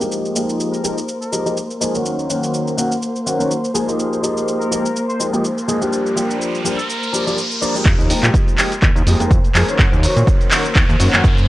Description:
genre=filtered disco house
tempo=124 BPM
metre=4/4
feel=swing 56% on 16ths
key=unclear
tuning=A4 = 438 Hz
part: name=clear grand piano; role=accompaniment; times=0.0-11.2 s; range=Eb3 to Bb4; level=-20 LUFS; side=left 1 dB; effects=phaser, sidechain pumping, low-pass filter
part: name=muted chamber string section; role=sustained chords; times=0.0-11.5 s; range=Bb3 to C5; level=-25 LUFS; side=equal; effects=sidechain pumping, low-pass filter
part: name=punchy analog drum machine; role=drums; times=0.0-11.5 s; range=cabasa, handclaps, hi-hat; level=-20 LUFS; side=equal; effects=sidechain pumping on perc, sidechain pumping on hats
part: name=muted trumpet section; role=melody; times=0.7-1.6, 4.6-7.3 s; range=Bb4 to C5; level=-31 LUFS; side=left 2 dB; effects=sidechain pumping, low-pass filter, tape echo
part: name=riser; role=sound effects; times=5.3-11.5 s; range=none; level=-28 LUFS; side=right 1 dB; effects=none
part: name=fat analog bass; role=bass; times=7.9-11.5 s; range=Eb2 to Bb2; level=-17 LUFS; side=equal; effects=sidechain pumping, low-pass filter
part: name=electronic kick drum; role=drums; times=7.9-11.3 s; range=none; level=-15 LUFS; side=equal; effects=none
room=light reverb, small room ambience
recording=dry, gritty hardware recording, cassette tape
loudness=-15 LUFS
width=side -16 dB against mid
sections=0.0-7.9 A section; 7.9-11.5 B section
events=filter sweep 0.0-7.9, 7.9-11.5; riser 5.3-7.9; build-up 7.9-11.5; drum fill 7.9-11.5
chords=0.0 Fm11; 2.0 Gb6; 3.7 Fm11; 9.8 Gb6

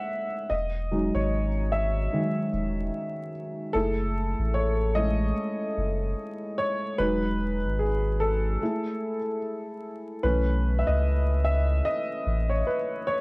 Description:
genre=lo-fi hip hop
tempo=74 BPM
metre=4/4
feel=swing 58% on 16ths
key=unclear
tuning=A4 = 440 Hz
part: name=dark upright piano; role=accompaniment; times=0.0-13.2 s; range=D#3 to F#5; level=-27 LUFS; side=equal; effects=cassette tape, plate reverb
part: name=soft dub sub bass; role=bass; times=0.5-12.6 s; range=E1 to C#2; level=-26 LUFS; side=equal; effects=none
room=light reverb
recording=vinyl crackle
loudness=-24 LUFS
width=side -26 dB against mid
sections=0.0-10.2 A section; 10.2-13.2 B section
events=upright piano solo 0.0-10.2, 10.2-13.2; break 8.6-10.2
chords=0.5 Emaj7; 3.7 F#m7; 7.0 Emaj7; 8.6 Eadd11/A; 10.2 B9sus4

